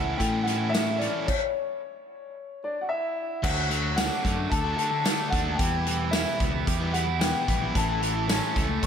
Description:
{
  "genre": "indie rock",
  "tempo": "111 BPM",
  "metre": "4/4",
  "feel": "straight",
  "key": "D major",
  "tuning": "A4 = 440 Hz",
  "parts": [
    { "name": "clear upright piano", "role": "melody", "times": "0.0-8.9 s", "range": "C#5 to A5", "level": "-30 LUFS", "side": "left 2 dB", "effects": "slapback echo, analog delay" },
    { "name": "sweeping resonant pad", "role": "sustained chords", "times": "0.0-8.9 s", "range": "G4 to E6", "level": "-42 LUFS", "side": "equal", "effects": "none" },
    { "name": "crunchy overdriven guitar", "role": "riff", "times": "0.0-8.9 s", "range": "E2 to F#4", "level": "-32 LUFS", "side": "left 6 dB", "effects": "none" },
    { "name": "overdriven electric guitar", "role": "riff", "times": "0.0-8.9 s", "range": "E3 to A4", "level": "-32 LUFS", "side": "right 7 dB", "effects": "lush chorus, slapback echo" },
    { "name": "picked electric bass", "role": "bass", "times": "0.0-8.9 s", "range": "A1 to A2", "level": "-30 LUFS", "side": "equal", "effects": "none" },
    { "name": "loose indie drum kit", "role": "drums", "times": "0.2-8.9 s", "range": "crash cymbal, hi-hat, kick drum, snare drum, tambourine", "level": "-28 LUFS", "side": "equal", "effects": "none" },
    { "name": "clear trumpet", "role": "second line", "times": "2.6-8.9 s", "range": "D4 to C#5", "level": "-40 LUFS", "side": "right 5 dB", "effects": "slapback echo, analog delay" }
  ],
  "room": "moderate lush hall reverb, RT60 2.1 s",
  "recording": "big arena sound",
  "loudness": "-24 LUFS",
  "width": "side -8 dB against mid",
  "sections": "0.0-3.4 A section; 3.4-8.9 B section",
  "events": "stop 1.3-3.4",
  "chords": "0.0 A; 3.4 D; 5.6 Em; 7.7 A"
}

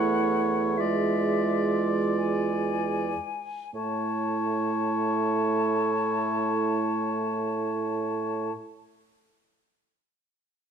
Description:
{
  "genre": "classical, slow romantic movement for wind quintet",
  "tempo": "free time",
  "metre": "none",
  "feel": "none",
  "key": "A major",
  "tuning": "A4 = 441 Hz",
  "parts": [
    { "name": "concert flute", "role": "melody", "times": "0.0-8.5 s", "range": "E5 to A5", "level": "-32 LUFS", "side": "left 8 dB", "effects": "none" },
    { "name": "clear oboe", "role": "second line", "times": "0.0-8.5 s", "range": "C#5 to D5", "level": "-32 LUFS", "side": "left 3 dB", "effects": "none" },
    { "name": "clear French horn", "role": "accompaniment", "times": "0.0-8.5 s", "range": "G#3 to A3", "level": "-30 LUFS", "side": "equal", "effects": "none" },
    { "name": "warm clarinet", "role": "accompaniment", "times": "0.0-8.5 s", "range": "E4 to F4", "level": "-31 LUFS", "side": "right 11 dB", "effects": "none" },
    { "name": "mellow bassoon", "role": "bass", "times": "0.0-8.5 s", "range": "E2 to A2", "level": "-30 LUFS", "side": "right 6 dB", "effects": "none" }
  ],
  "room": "moderate recital hall reverb, RT60 1.4 s",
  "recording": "close, detailed microphones",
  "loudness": "-24 LUFS",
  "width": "side -7 dB against mid",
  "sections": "0.0-3.8 A section; 3.8-9.5 B section",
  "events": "slowing down 0.0-3.8",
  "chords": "0.0 A/E; 0.8 E7b9; 3.8 A"
}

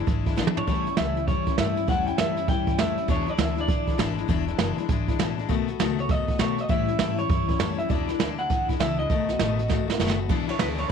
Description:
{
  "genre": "rockabilly",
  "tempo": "200 BPM",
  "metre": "4/4",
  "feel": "swing 64% on 8ths",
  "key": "E mixolydian",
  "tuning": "A4 = 440 Hz",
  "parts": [
    { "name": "picked steel-string acoustic guitar", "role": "accompaniment", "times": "0.0-10.9 s", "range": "E2 to F#4", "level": "-28 LUFS", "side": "left 13 dB", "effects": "none" },
    { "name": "upright bass", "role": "bass", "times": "0.0-10.9 s", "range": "E1 to B2", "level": "-32 LUFS", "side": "equal", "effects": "none" },
    { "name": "jazz brush drum kit", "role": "drums", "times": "0.1-10.9 s", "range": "hi-hat, kick drum, ride cymbal, snare drum, toms", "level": "-26 LUFS", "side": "right 4 dB", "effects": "none" },
    { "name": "electric guitar through a small old amp", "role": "melody", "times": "0.6-4.0, 6.0-10.9 s", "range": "G#4 to G5", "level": "-29 LUFS", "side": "right 2 dB", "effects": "tape echo" }
  ],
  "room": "light reverb, small room ambience",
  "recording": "1960s-style stereo",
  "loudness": "-22 LUFS",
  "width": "side -7 dB against mid",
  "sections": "0.0-10.3 A section",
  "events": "drum fill 0.4-0.7, 9.7-10.3",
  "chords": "0.0 E7; 0.7 A7; 3.1 E7; 5.5 B7; 6.7 A7; 7.9 E7; 9.1 B7; 10.3 E7"
}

